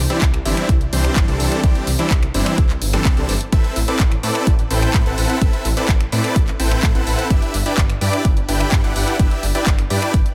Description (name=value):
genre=EDM, festival progressive house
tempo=127 BPM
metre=4/4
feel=straight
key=unclear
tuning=A4 = 440 Hz
part: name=detuned saw bass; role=bass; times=0.0-10.2 s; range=G1 to A2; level=-24 LUFS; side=equal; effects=chorus, sidechain pumping
part: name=big supersaw lead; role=riff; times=0.1-10.2 s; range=E3 to G5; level=-23 LUFS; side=equal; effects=sidechain pumping, tape echo
part: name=house drum kit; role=drums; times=0.1-10.3 s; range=finger snaps, handclaps, hi-hat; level=-28 LUFS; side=equal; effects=overdrive
part: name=electronic kick drum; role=drums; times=0.2-10.2 s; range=none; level=-18 LUFS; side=equal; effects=overdrive
room=digital ambience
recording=dense, heavily limited modern master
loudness=-17 LUFS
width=mono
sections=0.0-10.3 A section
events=none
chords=0.0 Cadd9; 3.5 Amadd9; 7.3 Em7/G